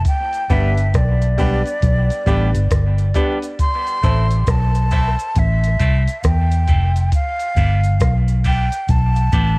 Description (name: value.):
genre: dub reggae.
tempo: 68 BPM.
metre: 4/4.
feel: swing 63% on 16ths.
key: unclear.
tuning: A4 = 440 Hz.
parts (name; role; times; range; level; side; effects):
breathy jazz flute; melody; 0.0-9.6 s; D5 to C6; -23 LUFS; equal; cassette tape, dub echo.
vintage muted fingered electric bass; bass; 0.0-9.6 s; F1 to E2; -15 LUFS; equal; tube saturation.
soft vintage rhythm box; drums; 0.1-9.6 s; hi-hat, kick drum, rim click; -19 LUFS; equal; cassette tape.
cabasa; percussion; 0.1-9.6 s; none; -43 LUFS; right 2 dB; high-pass filter on perc.
semi-hollow electric guitar; accompaniment; 0.5-9.6 s; G3 to A4; -27 LUFS; right 2 dB; high-pass filter, cassette tape, dub echo.
bright upright piano; stabs; 0.5-9.6 s; B3 to C5; -29 LUFS; left 2 dB; high-pass filter, cassette tape, dub echo.
room: studio reverb.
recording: home recording on cassette.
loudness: -14 LUFS.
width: side -27 dB against mid.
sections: 0.0-9.6 A section.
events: filter sweep 0.1-9.6.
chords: 0.1 G; 3.6 Am; 7.1 G.